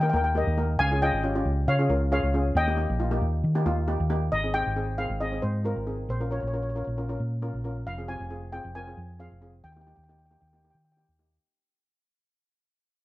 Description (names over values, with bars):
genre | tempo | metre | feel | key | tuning
calypso | 136 BPM | 4/4 | straight | unclear | A4 = 440 Hz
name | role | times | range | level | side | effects
steel pan | melody | 0.0-11.1 s | Bb4 to Ab5 | -29 LUFS | left 1 dB | none
steel pan | accompaniment | 0.0-11.4 s | Bb3 to Bb4 | -32 LUFS | left 1 dB | none
hollow-body short-scale fingered electric bass | bass | 0.0-11.4 s | F1 to Eb3 | -27 LUFS | equal | none
room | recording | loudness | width
moderate studio ambience, RT60 0.5 s | none | -24 LUFS | side -17 dB against mid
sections
0.0-4.3 A section; 4.3-11.4 B section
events
fade-out 4.3-11.4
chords
0.0 Eb; 0.8 Db; 2.6 Eb; 4.3 Ab; 6.1 Bbm; 7.9 Fm; 9.6 Eb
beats
0.36 | 0.80 1.24 1.68 2.12 | 2.56 3.00 3.44 3.88 | 4.32 4.77 5.21 5.65 | 6.09 6.53 6.98 7.42 | 7.86 8.31 8.75 9.19 | 9.63 10.08 10.52 10.96